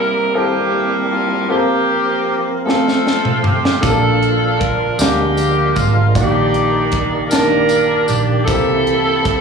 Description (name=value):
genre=slow gospel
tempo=52 BPM (dotted quarters)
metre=6/8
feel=straight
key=Bb major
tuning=A4 = 440 Hz
part: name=clear saxophone section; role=melody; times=0.0-9.4 s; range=Bb3 to Bb4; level=-16 LUFS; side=right 1 dB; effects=slapback echo
part: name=warm baby grand piano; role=accompaniment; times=0.0-9.4 s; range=Bb2 to A5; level=-20 LUFS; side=left 4 dB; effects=slapback echo
part: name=tonewheel organ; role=sustained chords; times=0.0-9.4 s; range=Eb3 to D5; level=-22 LUFS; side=right 5 dB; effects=slow rotary speaker, overdrive, chorus vibrato
part: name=crisp fusion drum kit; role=drums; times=2.7-9.4 s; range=hi-hat, kick drum, snare drum, toms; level=-19 LUFS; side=right 1 dB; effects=none
part: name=hollow-body short-scale picked electric bass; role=bass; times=3.8-9.4 s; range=Ab1 to D2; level=-20 LUFS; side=right 2 dB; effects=none
part: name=tambourine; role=percussion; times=3.8-8.8 s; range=none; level=-28 LUFS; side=left 2 dB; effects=none
room=light reverb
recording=live gig heard through the venue's PA, club reverb, studio ambience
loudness=-13 LUFS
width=side -5 dB against mid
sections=0.0-9.4 A section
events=drum fill 2.7-3.8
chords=0.0 C7; 1.5 Fsus4; 2.7 F; 3.8 Bbmaj7; 5.0 Bb7/D; 6.2 Ebmaj7/Bb; 8.5 C7